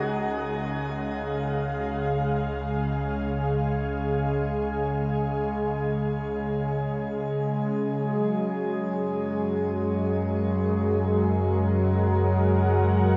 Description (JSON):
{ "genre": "ambient", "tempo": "free time", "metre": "none", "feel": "none", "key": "Db major", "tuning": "A4 = 443 Hz", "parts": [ { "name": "warm analog pad", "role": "sustained chords", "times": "0.0-13.2 s", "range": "Db3 to Ab5", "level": "-28 LUFS", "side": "equal", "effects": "lush chorus" }, { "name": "round analog bass", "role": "bass", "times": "0.0-13.2 s", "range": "Db2 to Gb2", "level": "-32 LUFS", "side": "equal", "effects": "none" }, { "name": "pedal harmonium", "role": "drone", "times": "0.0-13.2 s", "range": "Db3 to Ab3", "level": "-34 LUFS", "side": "equal", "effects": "none" } ], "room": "wet shimmer reverb, RT60 8.5 s", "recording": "none", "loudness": "-26 LUFS", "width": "mono", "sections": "0.0-13.2 A section", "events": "fade-in on analog synth pad 0.0-13.2; fade-in on analog synth bass 0.0-13.2; fade-in on harmonium 0.0-13.2", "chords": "0.0 Db; 8.0 Gbadd9" }